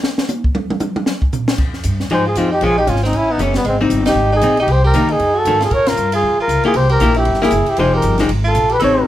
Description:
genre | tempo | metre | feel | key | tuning
jazz, small-group swing and bop | 232 BPM | 4/4 | swing 59% on 8ths | F minor | A4 = 438 Hz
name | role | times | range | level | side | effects
compact cocktail drum kit | drums | 0.0-8.9 s | crash cymbal, hi-hat, kick drum, ride cymbal, snare drum, toms | -22 LUFS | equal | none
upright bass | bass | 1.6-9.1 s | F1 to Bb2 | -18 LUFS | equal | none
breathy flugelhorn | melody | 2.1-9.1 s | B3 to Db5 | -16 LUFS | equal | plate reverb
clear tenor saxophone | second line | 2.1-9.0 s | G3 to Bb4 | -21 LUFS | right 2 dB | none
archtop guitar, miked and amplified | accompaniment | 2.1-9.1 s | Eb3 to G4 | -18 LUFS | left 3 dB | none
room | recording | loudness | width
wet small room reverb, RT60 0.5 s | heard from further back in the room | -13 LUFS | side -13 dB against mid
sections
0.0-1.6 A section; 1.6-9.1 B section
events
drum solo 0.0-1.6; band accent 4.0, 5.8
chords
0.0 N.C.; 1.6 Fm9; 2.6 Bbm7; 3.1 A9; 3.7 Abmaj7; 4.7 Cm7; 5.2 Gbm69; 5.7 Bbm7; 6.8 C7; 7.8 Fm9

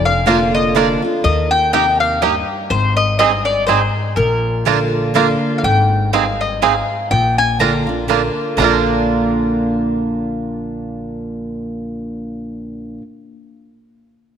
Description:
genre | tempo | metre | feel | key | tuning
bluegrass | 123 BPM | 3/4 | swing 55% on 8ths | Bb mixolydian | A4 = 436 Hz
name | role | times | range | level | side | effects
mandolin | melody | 0.0-13.0 s | Bb4 to Bb5 | -18 LUFS | left 3 dB | none
picked steel-string acoustic guitar | accompaniment | 0.0-13.0 s | F2 to F4 | -20 LUFS | right 1 dB | none
upright bass | bass | 0.0-13.0 s | F1 to Eb2 | -22 LUFS | left 2 dB | none
bluegrass banjo | arpeggios | 0.3-13.0 s | Bb3 to Bb4 | -22 LUFS | right 8 dB | none
mandolin | stabs | 0.3-13.0 s | Bb3 to Bb5 | -23 LUFS | right 9 dB | none
room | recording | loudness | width
moderate plate reverb, RT60 2.9 s | 1960s-style stereo | -14 LUFS | side -8 dB against mid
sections
0.0-5.6 A section; 5.6-8.6 B section; 8.6-11.5 C section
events
none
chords
0.0 Bb; 1.2 Eb; 2.7 Ab; 4.2 Bb; 5.6 Ab; 7.1 Bb

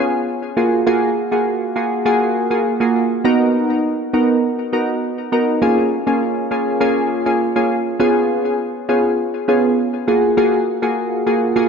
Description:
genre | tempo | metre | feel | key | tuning
afrobeats | 101 BPM | 4/4 | straight | F# major | A4 = 440 Hz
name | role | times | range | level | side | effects
glassy digital keys | solo | 0.0-11.7 s | A#3 to A#4 | -15 LUFS | equal | chorus, ping-pong delay
room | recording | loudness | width
wet plate reverb, RT60 2.6 s | dreamy mix soaked in reverb | -15 LUFS | side -6 dB against mid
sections
0.0-11.7 A section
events
none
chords
0.0 C#7; 0.6 F#maj9; 3.2 Bmaj7; 5.6 A#m7; 8.0 C#7; 10.1 F#maj9

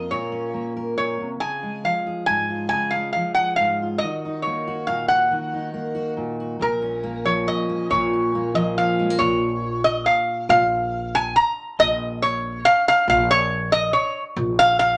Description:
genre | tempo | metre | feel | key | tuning
indie folk with a building arrangement | 139 BPM | 3/4 | straight | Bb minor | A4 = 441 Hz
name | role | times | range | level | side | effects
lap resonator guitar | melody | 0.0-15.0 s | Bb4 to Bb5 | -22 LUFS | equal | none
fingerpicked steel-string acoustic guitar | accompaniment | 0.0-10.5 s | F2 to Bb4 | -28 LUFS | equal | none
upright bass | bass | 6.6-15.0 s | Bb1 | -30 LUFS | equal | none
room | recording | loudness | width
moderate studio reverb, RT60 0.6 s | none | -22 LUFS | mono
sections
0.0-6.6 A section; 6.6-11.8 B section; 11.8-15.0 C section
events
build-up 6.6-11.8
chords
0.0 Bbm; 1.4 Db; 4.0 Ebm; 6.6 Bbm

